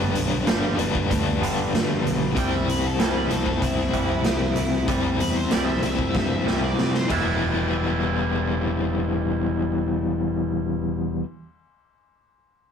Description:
quiet-loud alternative rock; 95 BPM; 4/4; straight; E minor; A4 = 438 Hz
twangy electric guitar; arpeggios; 0.0-11.3 s; E2 to E4; -31 LUFS; right 6 dB
biting overdriven guitar; riff; 0.0-11.3 s; G2 to E4; -24 LUFS; left 3 dB; tremolo
growling fingered electric bass; bass; 0.0-11.2 s; E1 to C3; -29 LUFS; right 1 dB; overdrive
raw garage drum kit; drums; 0.2-7.2 s; hi-hat, kick drum, ride cymbal, snare drum; -26 LUFS; right 2 dB
octave-fuzz lead guitar; melody; 2.4-7.4 s; E4 to G5; -31 LUFS; right 2 dB; distortion
moderate small room reverb, RT60 0.6 s; rough rehearsal-room recording, warm saturation; -21 LUFS; side -7 dB against mid
0.0-7.4 A section; 7.4-9.9 B section
lead electric guitar solo 0.0-7.4; drum fill 6.1-7.4
0.0 G; 2.4 C; 7.1 Em7

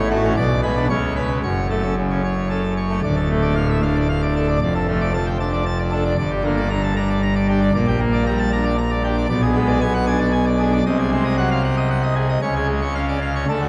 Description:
classical, organ toccata; 115 BPM; 3/4; straight; F# minor, D minor from 3.0 s; A4 = 441 Hz
pipe organ, full organ; solo; 0.0-13.7 s; D1 to Bb5; -20 LUFS; equal
wet church reverb, RT60 3.7 s; dark, warm production, vinyl crackle; -20 LUFS; mono
0.0-3.0 A section; 3.0-13.7 B section
0.4 G#dim/B; 0.9 Bsus2/C#; 1.4 F#m; 3.0 Dm; 4.6 Dm/F; 6.2 Gm; 7.7 Gm/Bb; 9.3 G#dim/B; 10.9 G#7/B#; 12.4 C#

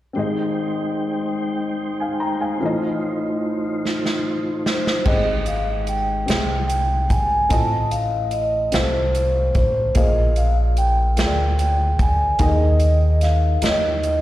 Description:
slow gospel; 49 BPM (dotted quarters); 6/8; straight; Ab major; A4 = 440 Hz
warm upright piano; accompaniment; 0.1-14.2 s; Ab1 to Bb5; -26 LUFS; left 3 dB; plate reverb, slapback echo
mellow tonewheel organ; sustained chords; 0.2-5.0 s; Ab3 to G5; -24 LUFS; equal; slow rotary speaker, chorus vibrato, plate reverb
swinging big-band drum kit; drums; 3.9-14.2 s; crash cymbal, hi-hat, kick drum, snare drum; -24 LUFS; equal
vibraphone with soft mallets; melody; 4.7-14.2 s; C5 to A5; -21 LUFS; right 1 dB; plate reverb, slapback echo
upright bass; bass; 5.1-14.2 s; Ab1 to Eb2; -20 LUFS; equal
light reverb; live gig heard through the venue's PA, recital hall reverb, faint mains hum; -18 LUFS; side -14 dB against mid
0.2-5.1 A section; 5.1-14.2 B section
drum fill 3.8-5.1
0.2 Abmaj7; 2.6 F7/A; 5.1 Abmaj7; 7.5 F7/A; 10.0 Bb7; 12.4 Ebsus4; 13.6 Eb

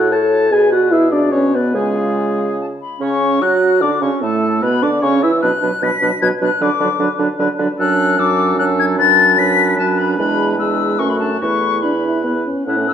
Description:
quick classical-period movement for wind quintet; 140-154 BPM; 3/4; rubato; F# minor; A4 = 439 Hz
silver concert flute; melody; 0.0-12.9 s; A4 to B6; -19 LUFS; left 7 dB
warm oboe; second line; 0.0-12.9 s; F#4 to A5; -22 LUFS; left 3 dB
clear clarinet; accompaniment; 0.0-12.9 s; A3 to C#5; -22 LUFS; right 6 dB
mellow French horn; accompaniment; 0.0-12.9 s; F#3 to A4; -19 LUFS; equal
mellow bassoon; bass; 0.0-12.9 s; E2 to F#3; -19 LUFS; right 2 dB
wet recital hall reverb, RT60 1.4 s; dark, warm production; -13 LUFS; side -8 dB against mid
0.0-3.0 A section; 3.0-12.7 B section
0.0 F#m/A; 0.5 G#dim/B; 1.7 C#; 3.0 F#5/C#; 4.2 Bm11/A; 5.4 Bm; 6.6 Bm/D; 7.8 D/F#; 10.2 E7; 11.0 F#m; 11.4 Esus4; 12.3 E5

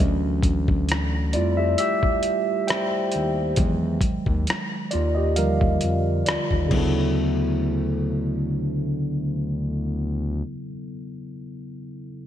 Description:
R&B, neo-soul; 67 BPM; 4/4; swing 53% on 16ths; D major; A4 = 440 Hz
barky tine electric piano; accompaniment; 0.0-12.3 s; C#3 to G5; -24 LUFS; right 1 dB; overdrive, lush chorus, low-pass filter
smooth synth bass; bass; 0.0-10.4 s; D2 to F2; -24 LUFS; left 1 dB
boom bap sampler-style drum kit; drums; 0.4-6.9 s; crash cymbal, hi-hat, kick drum, rim click; -25 LUFS; left 1 dB; gated reverb
light reverb; bright 1980s-style digital production; -21 LUFS; side -10 dB against mid
0.0-7.2 A section; 7.2-10.7 B section
tine electric piano solo 0.0-7.2; filter sweep on tine electric piano 0.0-7.2
0.0 Dmaj9; 1.3 Fmaj9; 3.6 Emaj9; 4.9 Ebmaj9; 6.7 Dmaj9

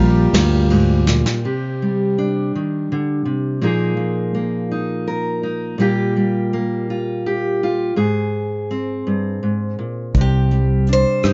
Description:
acoustic folk-pop ballad; 55 BPM (dotted quarters); 6/8; straight; C minor; A4 = 441 Hz
picked old ladder-braced acoustic guitar; melody; 0.0-0.7, 10.2-11.3 s; G4 to C5; -24 LUFS; equal
fingerpicked steel-string acoustic guitar; accompaniment; 0.0-11.3 s; G2 to Bb4; -21 LUFS; equal
warm chamber string section; sustained chords; 0.0-1.4 s; G3 to G4; -32 LUFS; equal
fingered electric bass; bass; 0.0-1.2, 10.1-11.3 s; Bb1 to G2; -18 LUFS; equal
soft brush drum kit; drums; 0.3-1.4, 10.1-11.3 s; hi-hat, kick drum, ride cymbal, rim click, snare drum; -23 LUFS; equal
light reverb; dark, warm production, nothing above 7.6 kHz; -19 LUFS; mono
0.0-1.4 A section; 1.4-10.2 B section; 10.2-11.3 C section
drum fill 1.1-1.4
0.0 Gm7/Bb; 1.4 Cmadd9; 3.6 Bb7sus4; 5.8 Gm7/Bb; 8.0 Ab; 10.2 Csus2

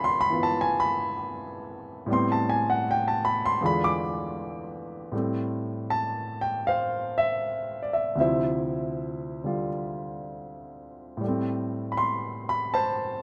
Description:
solo jazz; 79 BPM; 4/4; swing 67% on 8ths; A minor; A4 = 440 Hz
warm grand piano; solo; 0.0-13.2 s; D2 to D6; -28 LUFS; equal
moderate plate reverb, RT60 3.1 s; rough home demo mix; -27 LUFS; mono
0.0-5.1 A section; 5.1-13.2 B section
grand piano solo 0.0-5.1
0.0 E7b9; 2.1 Am9; 3.6 E7b9; 5.1 Am7; 8.2 Dm9; 11.2 Am7

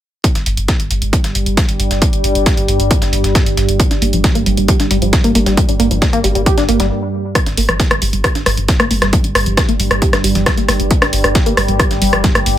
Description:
driving peak-time techno; 135 BPM; 4/4; straight; G minor; A4 = 439 Hz
deep dark ambient pad; drone; 1.0-12.6 s; G2 to G3; -20 LUFS; right 1 dB; chorus, built-in reverb, sidechain pumping
dusty soul sampler-style drum kit; drums; 0.2-12.6 s; hi-hat, snare drum; -24 LUFS; right 1 dB; high-pass filter on hats, high-pass filter on snare
electronic kick drum; drums; 0.2-12.3 s; -15 LUFS; equal
punchy analog drum machine; drums; 0.2-12.6 s; hi-hat, rim click; -17 LUFS; equal
saturated sub bass; bass; 0.4-12.6 s; G1; -19 LUFS; equal; tube saturation, sidechain pumping, low-pass filter
tight sequenced synth; riff; 3.8-12.5 s; F3 to G4; -19 LUFS; equal; chorus, tube saturation, sidechain pumping, ping-pong delay
light reverb; -11 LUFS; side -12 dB against mid
0.2-7.4 A section; 7.4-12.6 B section
stop 6.9-7.4; filter sweep on synth arpeggio sound 7.4-12.6
0.2 N.C.; 7.4 Gm

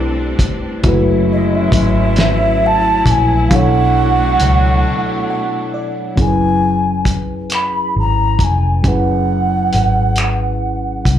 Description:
slow six-eight R&B; 45 BPM (dotted quarters); 6/8; straight; A4 = 440 Hz
mellow FM electric piano; accompaniment; 0.0-11.2 s; B2 to F#5; -19 LUFS; left 1 dB; chorus, plate reverb
clear studio string section; sustained chords; 0.0-6.2 s; B2 to E4; -24 LUFS; equal; plate reverb
warm horn section; stabs; 0.0-5.7 s; F#3 to A4; -24 LUFS; left 1 dB; plate reverb, slapback echo
vintage muted fingered electric bass; bass; 0.0-11.2 s; E#1 to C#2; -17 LUFS; equal
cloth-damped thuddy drum kit; drums; 0.4-11.2 s; finger snaps, hi-hat, kick drum, snare drum; -16 LUFS; equal
mellow alto ocarina; melody; 1.3-11.1 s; D#5 to B5; -17 LUFS; right 1 dB; plate reverb, slapback echo, tape echo
light reverb; live gig heard through the venue's PA, club reverb; -12 LUFS; side -10 dB against mid
0.0-6.2 A section; 6.2-11.2 B section
break 4.8-6.2; FM electric piano fill 4.8-6.2
0.0 Am11; 0.8 F#m11; 3.5 Bm11; 6.2 F#9sus4

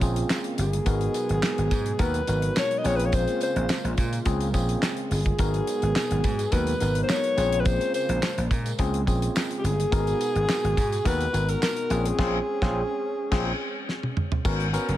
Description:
early-eighties boogie funk; 106 BPM; 4/4; straight; A4 = 440 Hz
overdriven tine electric piano; accompaniment; 0.0-15.0 s; B3 to A#4; -31 LUFS; left 2 dB; auto-pan
brassy analog pad; sustained chords; 0.0-14.4 s; B2 to F#4; -35 LUFS; right 2 dB; chorus
vintage slap bass; bass; 0.0-15.0 s; F#1 to A#2; -26 LUFS; equal
damped 70s drum kit; drums; 0.0-15.0 s; crash cymbal, handclaps, hi-hat, kick drum, snare drum, toms; -28 LUFS; equal
tambourine; percussion; 0.0-14.9 s; -41 LUFS; right 11 dB
breathy alto saxophone; melody; 0.6-13.9 s; G4 to D#5; -28 LUFS; left 1 dB; tape echo
small room ambience; -22 LUFS; side -13 dB against mid
0.0-14.4 A section
band accent 12.2-14.4; drum fill 13.9-14.4
0.0 A#m9; 0.9 G#m9; 2.8 A#m9; 5.4 G#m9; 7.4 A#m9; 9.9 G#m9; 11.9 A#m9; 14.4 G#m11

